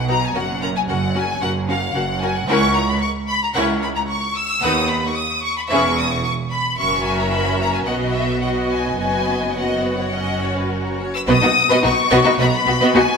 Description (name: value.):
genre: quick classical-period movement for string orchestra.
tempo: 111 BPM.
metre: 4/4.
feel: rubato.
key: B major.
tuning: A4 = 444 Hz.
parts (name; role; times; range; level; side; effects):
bright symphonic violin section; melody; 0.0-13.2 s; E5 to E6; -20 LUFS; left 3 dB; none.
clear symphonic double bass section; bass; 0.0-13.0 s; E1 to D#2; -26 LUFS; right 4 dB; none.
rich symphonic cello section; bass; 0.0-13.0 s; C#2 to B2; -25 LUFS; right 2 dB; none.
rich symphonic violin section; second line; 0.1-13.0 s; D#4 to F#5; -23 LUFS; left 2 dB; none.
rich symphonic viola section; accompaniment; 0.1-13.0 s; B3 to G#4; -22 LUFS; equal; none.
room: wet scoring stage reverb, RT60 1.7 s.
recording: minimal, uncompressed stereo recording.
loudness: -16 LUFS.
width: side -5 dB against mid.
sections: 0.0-11.3 A section; 11.3-13.2 B section.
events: none.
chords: 0.4 F#; 2.5 F#7/C#; 4.6 B/D#; 5.7 C#m7/E; 6.8 F#7; 7.9 B; 9.0 B/F#; 10.1 F#; 11.3 B.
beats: | 0.35 0.89 1.41 1.95 | 2.48 3.01 3.55 4.08 | 4.62 5.16 5.70 6.24 | 6.78 7.32 7.86 8.42 | 8.98 9.56 10.13 10.71 | 11.27 11.83 12.38 12.93.